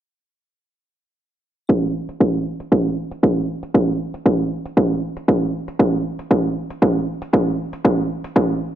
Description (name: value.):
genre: nu-disco, nu disco.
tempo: 117 BPM.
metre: 4/4.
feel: swing 56% on 16ths.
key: none.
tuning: none.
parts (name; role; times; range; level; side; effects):
electronic hi-hat; drums; 1.7-8.5 s; none; -38 LUFS; left 1 dB; studio reverb.
electronic kick drum; drums; 1.7-8.5 s; none; -17 LUFS; right 1 dB; high-pass filter on kick, studio reverb.
room: digital ambience.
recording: dense, heavily limited modern master, low-pass filter.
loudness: -17 LUFS.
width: side -11 dB against mid.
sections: 1.7-8.8 A section.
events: filter sweep 1.7-8.8.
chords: none.